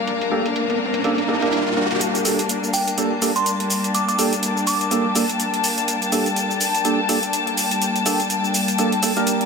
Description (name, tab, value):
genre	bass house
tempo	124 BPM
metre	4/4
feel	swing 58% on 16ths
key	G minor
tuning	A4 = 440 Hz
part	dark studio string section	sustained chords	0.0-9.5 s	G3 to A5	-24 LUFS	left 4 dB	low-pass filter
part	riser	sound effects	0.0-2.0 s	none	-25 LUFS	equal	none
part	muted studio string section	texture	0.0-9.5 s	Bb3 to A5	-25 LUFS	left 2 dB	none
part	electronic hi-hat and shaker	drums	0.1-9.5 s	none	-24 LUFS	right 1 dB	overdrive, high-pass filter on hats, low-pass filter on hats, studio reverb, high-pass filter on perc, low-pass filter on perc
part	percussive organ stab	stabs	0.3-9.5 s	Bb3 to Bb4	-24 LUFS	right 3 dB	lush chorus, cassette tape, ping-pong delay
part	glassy synth bell	melody	2.7-5.1 s	G5 to D6	-25 LUFS	right 2 dB	chorus, tremolo, ping-pong delay
room	moderate lush hall reverb, RT60 2.4 s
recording	high-pass filter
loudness	-18 LUFS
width	side -5 dB against mid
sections	0.0-2.0 A section; 2.0-9.5 B section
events	riser 0.0-2.0; build-up 2.0-9.5; filter sweep on synth stab 2.0-9.5; filter sweep on string section 2.0-9.5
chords	0.0 Gmadd9